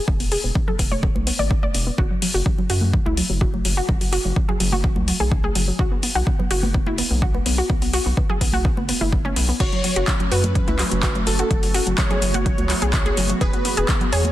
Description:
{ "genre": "progressive house", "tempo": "126 BPM", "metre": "4/4", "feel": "straight", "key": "F# minor", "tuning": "A4 = 441 Hz", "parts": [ { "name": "analog pluck", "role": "arpeggios", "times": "0.0-14.3 s", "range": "F#3 to D5", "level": "-25 LUFS", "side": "equal", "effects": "chorus, sidechain pumping, digital delay" }, { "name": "round analog bass", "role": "bass", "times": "0.1-14.3 s", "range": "E1 to F#2", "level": "-24 LUFS", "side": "equal", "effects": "sidechain pumping" }, { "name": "electronic kick drum", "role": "drums", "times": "0.1-14.0 s", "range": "none", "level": "-22 LUFS", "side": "equal", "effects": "overdrive" }, { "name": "deep house drum kit", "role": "drums", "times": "0.2-14.3 s", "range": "crash cymbal, handclaps, hi-hat", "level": "-25 LUFS", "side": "left 1 dB", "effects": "overdrive" }, { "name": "congas", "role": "percussion", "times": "0.7-14.3 s", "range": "none", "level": "-30 LUFS", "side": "right 2 dB", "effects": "sidechain pumping on perc" }, { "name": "plucky unison lead", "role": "melody", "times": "9.6-14.3 s", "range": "A4 to C#5", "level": "-27 LUFS", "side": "right 1 dB", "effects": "digital delay" }, { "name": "airy breathy pad", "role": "sustained chords", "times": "9.6-14.3 s", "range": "E3 to G#4", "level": "-29 LUFS", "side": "right 1 dB", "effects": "chorus, sidechain pumping" } ], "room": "light reverb, digital ambience", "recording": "dense, heavily limited modern master, lossy compression artefacts", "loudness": "-18 LUFS", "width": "side -14 dB against mid", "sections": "0.0-14.3 A section", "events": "none", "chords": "0.0 E; 2.0 F#5; 9.6 F#m; 13.4 Eadd9", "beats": "| 0.08 0.55 1.03 1.51 | 1.98 2.46 2.94 3.41 | 3.89 4.36 4.84 5.32 | 5.79 6.27 6.75 7.22 | 7.70 8.17 8.65 9.13 | 9.60 10.08 10.55 11.03 | 11.51 11.98 12.46 12.94 | 13.41 13.89" }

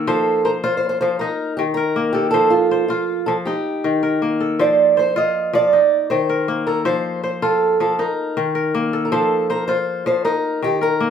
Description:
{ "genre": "west african traditional, West African string and xylophone music", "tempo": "106 BPM (dotted quarters)", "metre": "12/8", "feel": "straight", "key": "F mixolydian", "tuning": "A4 = 441 Hz", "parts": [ { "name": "kora", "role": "arpeggios", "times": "0.0-11.1 s", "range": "Eb3 to C5", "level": "-21 LUFS", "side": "left 4 dB", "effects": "none" }, { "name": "fingerpicked old ladder-braced acoustic guitar", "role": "melody", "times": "0.1-11.1 s", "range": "F4 to Eb5", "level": "-18 LUFS", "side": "right 3 dB", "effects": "none" } ], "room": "wet studio reverb, RT60 0.6 s", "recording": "band playing live in one room", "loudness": "-16 LUFS", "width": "side -8 dB against mid", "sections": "0.0-11.1 A section", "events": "none", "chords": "0.1 F; 1.2 Eb5; 2.3 F; 3.5 Eb; 4.6 F; 5.7 Eb5; 6.9 F; 8.0 Eb5; 9.1 F; 10.2 Eb5", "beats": "| 0.08 0.64 1.21 1.77 | 2.34 2.91 3.47 4.04 | 4.60 5.17 5.73 6.29 | 6.86 7.42 7.99 8.55 | 9.12 9.68 10.25 10.82" }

